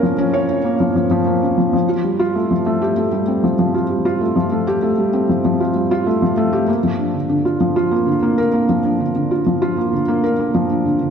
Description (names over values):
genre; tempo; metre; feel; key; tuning
electronica; 97 BPM; 4/4; straight; unclear; A4 = 440 Hz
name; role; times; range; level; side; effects
felt-muted upright piano; solo; 0.0-11.1 s; D3 to Db5; -15 LUFS; equal; none
room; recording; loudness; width
wet scoring stage reverb, RT60 1.8 s; none; -15 LUFS; side -7 dB against mid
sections
0.0-1.7 A section; 1.7-11.1 B section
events
build-up 0.0-1.7; drop 1.7-11.1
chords
none